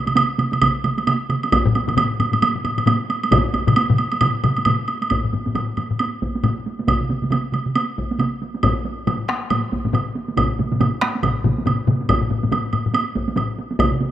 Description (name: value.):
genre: japanese traditional, taiko drum ensemble.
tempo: 136 BPM.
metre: 4/4.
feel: swing 60% on 16ths.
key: none.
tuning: none.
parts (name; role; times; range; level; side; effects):
solo taiko drums; percussion; 0.1-14.1 s; none; -23 LUFS; right 2 dB; none.
taiko ensemble; percussion; 0.1-14.1 s; none; -24 LUFS; right 4 dB; none.
woodblock; percussion; 0.1-13.9 s; none; -22 LUFS; right 3 dB; none.
solo taiko drums; percussion; 0.6-13.9 s; none; -24 LUFS; left 1 dB; none.
taiko ensemble; percussion; 1.7-13.5 s; none; -21 LUFS; left 4 dB; none.
room: light reverb, small room reverb.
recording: rough home demo mix.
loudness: -18 LUFS.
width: side -12 dB against mid.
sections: 0.0-5.1 A section; 5.1-14.1 B section.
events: speeding up 0.0-14.1.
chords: none.